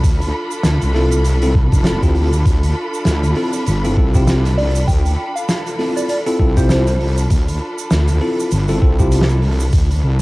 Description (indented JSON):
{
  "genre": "glitch hop",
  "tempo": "99 BPM",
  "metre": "4/4",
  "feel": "swing 58% on 16ths",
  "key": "D dorian",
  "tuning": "A4 = 440 Hz",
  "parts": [
    { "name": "wobble bass", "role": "bass", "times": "0.0-10.2 s", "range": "F1 to D2", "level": "-16 LUFS", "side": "equal", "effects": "chorus" },
    { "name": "electronic kick drum", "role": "drums", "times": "0.0-9.9 s", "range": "none", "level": "-15 LUFS", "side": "equal", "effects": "cassette tape" },
    { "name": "oversized low-tuned drum kit", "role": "drums", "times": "0.0-10.2 s", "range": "hi-hat, snare drum", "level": "-23 LUFS", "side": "equal", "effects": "cassette tape" },
    { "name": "tube shaker", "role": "percussion", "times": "0.0-10.2 s", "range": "none", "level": "-34 LUFS", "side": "right 9 dB", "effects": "none" },
    { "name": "warm symphonic string section", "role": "texture", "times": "0.0-10.2 s", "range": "D4 to B5", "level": "-25 LUFS", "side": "equal", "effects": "sidechain pumping, cassette tape" },
    { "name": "bell-like tine electric piano", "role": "stabs", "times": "0.9-9.3 s", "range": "C4 to A4", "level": "-20 LUFS", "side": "left 1 dB", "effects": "sidechain pumping, cassette tape, tape echo" },
    { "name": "plucky unison lead", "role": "melody", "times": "4.6-7.2 s", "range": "C5 to G5", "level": "-23 LUFS", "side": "right 1 dB", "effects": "cassette tape" }
  ],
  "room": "small room ambience",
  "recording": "home recording on cassette",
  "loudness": "-13 LUFS",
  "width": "side -21 dB against mid",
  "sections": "0.0-10.2 A section",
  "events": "none",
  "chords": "0.0 Dm7",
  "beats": "| 0.03 0.64 1.24 1.85 | 2.46 3.06 3.67 4.27 | 4.88 5.49 6.09 6.70 | 7.30 7.91 8.52 9.12 | 9.73"
}